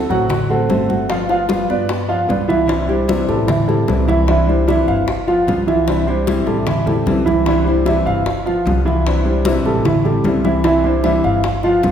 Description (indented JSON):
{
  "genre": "latin, Cuban son and guajira",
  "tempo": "151 BPM",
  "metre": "4/4",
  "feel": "straight",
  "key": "C major",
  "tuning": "A4 = 440 Hz",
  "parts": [
    { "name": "nylon-string guitar", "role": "accompaniment", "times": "0.0-11.9 s", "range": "C3 to F#4", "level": "-20 LUFS", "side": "left 3 dB", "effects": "none" },
    { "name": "dark concert grand piano", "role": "arpeggios", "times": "0.0-11.9 s", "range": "E3 to F#5", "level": "-17 LUFS", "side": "right 2 dB", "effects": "none" },
    { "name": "upright bass", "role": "bass", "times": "0.0-11.9 s", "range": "G1 to G2", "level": "-21 LUFS", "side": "equal", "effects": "none" },
    { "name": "bongos", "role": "percussion", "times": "0.1-11.9 s", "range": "none", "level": "-26 LUFS", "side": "left 4 dB", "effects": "none" },
    { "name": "congas", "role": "percussion", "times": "0.1-11.9 s", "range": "none", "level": "-24 LUFS", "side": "equal", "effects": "none" }
  ],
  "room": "wet scoring stage reverb, RT60 1.6 s",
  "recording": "recorded in a church or concert hall",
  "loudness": "-14 LUFS",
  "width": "side -8 dB against mid",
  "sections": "0.0-2.7 A section; 2.7-11.9 B section",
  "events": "none",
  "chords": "0.0 D7; 1.1 G7; 2.7 Cadd9; 3.5 Am7; 4.3 Cadd9; 5.1 G7; 5.9 Cadd9; 6.7 Am7; 7.5 Cadd9; 8.3 G7; 9.1 Cadd9; 9.8 Am7; 10.6 Cadd9"
}